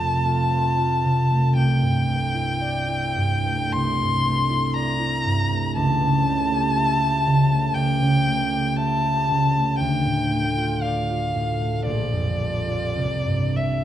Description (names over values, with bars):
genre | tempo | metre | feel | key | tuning
classical, romantic duo for violin and harp | 49-61 BPM | 4/4 | rubato | unclear | A4 = 443 Hz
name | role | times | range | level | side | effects
warm violin | melody | 0.0-13.8 s | D5 to C6 | -24 LUFS | left 2 dB | none
concert harp | accompaniment | 0.0-13.8 s | Bb1 to E5 | -21 LUFS | right 1 dB | none
room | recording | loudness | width
wet recital hall reverb, RT60 1.5 s | dark, warm production | -19 LUFS | side -11 dB against mid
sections
0.0-13.8 A section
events
none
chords
0.0 F; 1.6 C13; 5.8 A7/C#; 9.8 Dm; 11.9 Gm7/Bb; 13.0 C